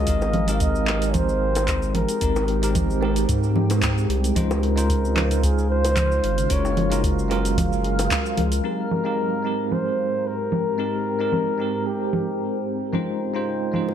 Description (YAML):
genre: sunset chillout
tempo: 112 BPM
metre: 4/4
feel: swing 53% on 16ths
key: Ab major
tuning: A4 = 440 Hz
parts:
  - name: dark flugelhorn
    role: melody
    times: 0.0-12.7 s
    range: G4 to F5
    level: -27 LUFS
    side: left 1 dB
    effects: vintage 12-bit sampler grit, tape echo
  - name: bell-like tine electric piano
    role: accompaniment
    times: 0.0-13.9 s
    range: Ab3 to C5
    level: -26 LUFS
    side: moving between left 5 dB and right 7 dB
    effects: fast stereo tremolo, auto-pan, vintage 12-bit sampler grit, tape echo
  - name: shimmering ambient pad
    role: sustained chords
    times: 0.0-13.9 s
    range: Ab2 to F5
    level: -29 LUFS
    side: equal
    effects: chorus, built-in reverb, phaser
  - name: round analog bass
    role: bass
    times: 0.0-8.6 s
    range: Gb1 to Ab2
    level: -23 LUFS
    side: equal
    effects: none
  - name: electronic kick drum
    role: drums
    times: 0.1-8.2 s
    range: none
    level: -25 LUFS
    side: equal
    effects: none
  - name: smooth R&B drum kit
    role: drums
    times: 0.1-13.9 s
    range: congas, handclaps, hi-hat, shaker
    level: -27 LUFS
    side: right 2 dB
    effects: overdrive, low-pass filter on hats, low-pass filter on perc, low-pass filter on snare, low-pass filter on room
  - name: bongos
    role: percussion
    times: 0.2-8.1, 13.9 s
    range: none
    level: -32 LUFS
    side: left 1 dB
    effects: none
room: moderate plate reverb, RT60 1.3 s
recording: dark, warm production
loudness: -20 LUFS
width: side -9 dB against mid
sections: 0.0-8.6 A section; 8.6-13.9 B section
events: filter sweep on ambient pad 8.6-13.9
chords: 0.1 Abmaj9; 4.4 Dbmaj9; 6.5 Gbmaj9; 8.6 Abmaj9; 12.9 Dbmaj9